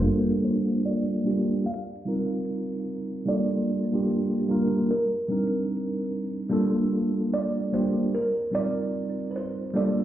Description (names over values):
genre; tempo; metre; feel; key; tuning
hip hop; 74 BPM; 4/4; swing 62% on 16ths; G minor; A4 = 441 Hz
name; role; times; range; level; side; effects
mellow tine electric piano; accompaniment; 0.0-10.0 s; G3 to Bb4; -24 LUFS; right 1 dB; medium stereo tremolo, cassette tape, low-pass filter, plate reverb
kalimba; melody; 0.4-10.0 s; Bb4 to F5; -31 LUFS; right 2 dB; low-pass filter, plate reverb
room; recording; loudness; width
moderate small room ambience, RT60 0.5 s; heard muffled through a wall, stone room reverb, vinyl crackle, EQ; -24 LUFS; side -12 dB against mid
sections
0.0-10.0 A section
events
filter sweep 0.0-10.0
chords
0.0 Gm9; 1.6 F9sus4; 3.3 Gm9; 4.9 Cm7; 6.5 Gm9; 8.1 F9sus4